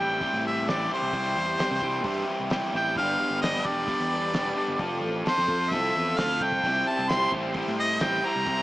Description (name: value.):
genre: classic rock.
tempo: 131 BPM.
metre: 4/4.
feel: straight.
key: C major.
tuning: A4 = 442 Hz.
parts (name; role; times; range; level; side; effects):
clear harmonica; melody; 0.0-8.6 s; C5 to C6; -26 LUFS; equal; slapback echo.
fingerpicked twelve-string acoustic guitar; accompaniment; 0.0-8.6 s; G2 to A4; -37 LUFS; equal; none.
crunchy overdriven guitar; riff; 0.0-8.6 s; G2 to A4; -29 LUFS; equal; slapback echo.
fingered electric bass; bass; 0.0-8.6 s; E1 to C3; -34 LUFS; equal; none.
cloth-damped thuddy drum kit; drums; 0.2-8.6 s; hi-hat, kick drum, snare drum; -35 LUFS; equal; none.
bright tonewheel organ; sustained chords; 6.6-8.6 s; G3 to C5; -38 LUFS; equal; none.
room: moderate lush hall reverb, RT60 1.9 s, small room ambience.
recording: big arena sound, small speaker sound.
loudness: -24 LUFS.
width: side -17 dB against mid.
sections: 0.0-8.6 A section.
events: harmonica solo 0.0-8.6; drum fill 6.4.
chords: 0.0 C; 3.0 G; 4.8 F; 6.6 C.